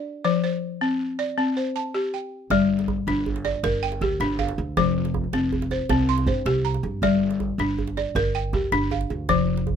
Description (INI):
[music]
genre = west african traditional, West African string and xylophone music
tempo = 106 BPM (dotted quarters)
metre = 12/8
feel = straight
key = G minor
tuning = A4 = 440 Hz
[part]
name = balafon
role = arpeggios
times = 0.0-9.8 s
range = F3 to C6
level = -23 LUFS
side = left 2 dB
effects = none
[part]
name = upright bass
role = bass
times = 2.5-9.8 s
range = F1 to G2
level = -27 LUFS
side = right 2 dB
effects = none
[part]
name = djembe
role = percussion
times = 2.5-9.8 s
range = none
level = -31 LUFS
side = right 6 dB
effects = none
[sound]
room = light reverb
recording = none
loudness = -21 LUFS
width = side -8 dB against mid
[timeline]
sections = 0.0-2.5 A section; 2.5-9.8 A section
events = none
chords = 0.2 F5; 1.4 C5; 2.5 Gm; 4.8 F5; 5.9 C5; 7.0 Gm